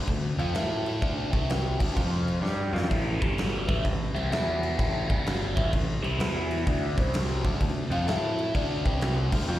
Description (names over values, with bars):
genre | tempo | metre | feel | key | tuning
blues rock power trio and southern rock | 128 BPM | 4/4 | swing 66% on 8ths | unclear | A4 = 440 Hz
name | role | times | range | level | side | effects
biting overdriven guitar | riff | 0.0-9.6 s | G2 to A4 | -30 LUFS | equal | phaser, slapback echo
modern bright picked electric bass | bass | 0.0-9.6 s | G1 to A2 | -30 LUFS | equal | none
huge arena drum kit | drums | 0.1-9.6 s | crash cymbal, kick drum, snare drum, toms | -29 LUFS | equal | none
room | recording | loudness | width
light reverb, studio ambience | live gig heard through the venue's PA, recital hall reverb | -24 LUFS | side -14 dB against mid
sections
0.0-2.9 A section; 2.9-9.6 A section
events
drum fill 2.4-2.9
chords
0.0 D5; 0.5 A5; 1.0 D5; 1.3 C5; 1.7 D5; 2.0 F5; 2.4 Fsus2; 2.9 A5; 3.1 G5; 3.6 A5; 4.3 E5; 4.8 A5; 5.0 G5; 5.5 A5; 6.2 E5; 6.7 D5; 6.9 C5; 7.4 D5; 8.1 A5; 8.5 D5; 8.8 C5; 9.2 D5